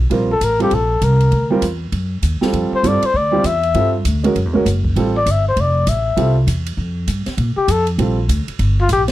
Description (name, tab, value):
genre	jazz, small-group swing and bop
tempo	198 BPM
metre	4/4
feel	swing 62% on 8ths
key	unclear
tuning	A4 = 440 Hz
part	upright bass	bass	0.0-9.1 s	F1 to Bb2	-18 LUFS	equal	none
part	warm concert grand piano	accompaniment	0.1-8.2 s	G3 to Bb4	-18 LUFS	right 3 dB	none
part	open jazz drum kit	drums	0.1-9.1 s	hi-hat, kick drum, ride cymbal, snare drum	-27 LUFS	equal	none
part	breathy trumpet	melody	0.3-9.0 s	F4 to E5	-17 LUFS	left 3 dB	none
room	small room ambience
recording	dry, close 1970s-style studio recording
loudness	-14 LUFS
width	side -15 dB against mid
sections	0.0-7.4 A section; 7.4-9.1 B section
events	none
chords	0.1 Bbsus2; 1.3 Gm7; 1.9 Ebdim7; 2.5 Fadd9; 3.1 Dm9; 3.7 Gm9; 4.4 Gb9; 5.0 Fmaj7; 7.4 Bbmaj7; 8.6 Gm